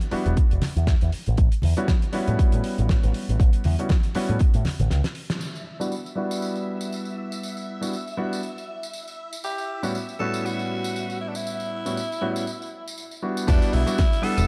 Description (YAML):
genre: nu-disco, nu disco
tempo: 119 BPM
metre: 4/4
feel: swing 56% on 16ths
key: E dorian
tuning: A4 = 441 Hz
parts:
  - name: damped 70s drum kit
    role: drums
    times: 0.0-14.5 s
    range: crash cymbal, hi-hat, rim click, snare drum, tambourine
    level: -35 LUFS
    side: equal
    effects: none
  - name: warm concert grand piano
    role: accompaniment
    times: 0.1-14.5 s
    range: A2 to F#5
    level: -30 LUFS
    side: equal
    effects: sidechain pumping, low-pass filter, delay
  - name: picked electric bass with an envelope filter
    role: bass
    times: 0.1-5.0, 13.5-14.5 s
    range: E1 to A2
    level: -24 LUFS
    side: equal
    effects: none
  - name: bongos and congas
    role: percussion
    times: 0.3-4.9 s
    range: none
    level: -35 LUFS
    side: equal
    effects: none
  - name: electronic kick drum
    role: drums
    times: 0.4-4.5, 13.5-14.1 s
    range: none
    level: -22 LUFS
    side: equal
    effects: none
  - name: string machine, full ensemble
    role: sustained chords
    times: 5.4-13.5 s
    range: E5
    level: -42 LUFS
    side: equal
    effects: phaser, ensemble chorus, sidechain pumping
  - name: raspy tenor saxophone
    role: melody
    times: 9.4-14.5 s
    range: D4 to A4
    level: -32 LUFS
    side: equal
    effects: delay
room: light reverb, small room ambience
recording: dark, warm production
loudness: -24 LUFS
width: mono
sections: 0.0-5.4 A section; 5.4-13.5 B section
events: break 4.9-5.4; drum fill 4.9-5.4; band accent 5.3; filter sweep on grand piano 5.4-13.5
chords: 0.0 Em7; 1.1 A13; 5.4 Em7; 9.2 A13; 13.5 Em7